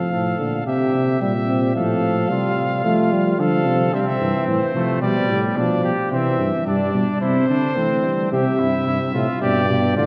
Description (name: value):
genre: classical, imitative canzona for brass ensemble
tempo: 110 BPM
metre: 4/4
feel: straight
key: unclear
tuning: A4 = 440 Hz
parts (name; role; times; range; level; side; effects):
- bright cornet; melody; 0.0-10.1 s; C5 to F5; -28 LUFS; equal; none
- warm trumpet; second line; 0.0-10.1 s; G3 to A4; -27 LUFS; equal; none
- warm euphonium; accompaniment; 0.0-10.1 s; G2 to C4; -24 LUFS; equal; none
- warm tuba; bass; 0.1-10.1 s; G2 to F3; -25 LUFS; equal; none
room: wet church reverb, RT60 2.9 s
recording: dark, warm production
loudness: -20 LUFS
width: mono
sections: 0.0-8.3 A section; 8.3-10.1 B section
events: none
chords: 0.0 F; 0.7 C; 1.8 F/A; 2.8 F; 3.9 C; 5.0 G; 6.1 C; 9.4 G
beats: 0.12 0.66 1.21 | 1.76 2.30 2.85 3.39 | 3.94 4.48 5.02 5.57 | 6.12 6.67 7.21 7.77 | 8.32 8.87 9.42 9.97